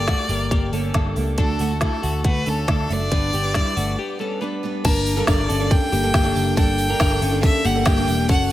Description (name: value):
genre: jangly indie pop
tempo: 139 BPM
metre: 4/4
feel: straight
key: unclear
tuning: A4 = 440 Hz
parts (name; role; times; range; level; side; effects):
- clear violin; melody; 0.0-8.5 s; A4 to G5; -25 LUFS; equal; none
- picked steel-string acoustic guitar; accompaniment; 0.0-8.5 s; G2 to B4; -28 LUFS; right 6 dB; none
- twelve-string electric guitar; arpeggios; 0.0-8.5 s; G3 to A5; -25 LUFS; left 5 dB; none
- vintage muted picked electric bass; bass; 0.0-8.5 s; E1 to D2; -24 LUFS; equal; none
- organic electronic drum kit; drums; 0.1-8.5 s; crash cymbal, hi-hat, kick drum, ride cymbal, snare drum; -22 LUFS; equal; none
- tambourine; percussion; 4.8-8.4 s; none; -39 LUFS; right 10 dB; none
room: little or no reverb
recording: none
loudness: -18 LUFS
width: side -14 dB against mid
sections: 0.0-4.8 A section; 4.8-8.5 B section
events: break 4.0-4.8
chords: 0.0 Gmadd9; 1.4 D; 3.1 G; 4.8 Gmadd9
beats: 0.08 0.52 0.95 | 1.39 1.82 2.25 2.69 | 3.12 3.55 3.98 4.42 | 4.85 5.28 5.71 6.14 | 6.57 7.00 7.43 7.87 | 8.29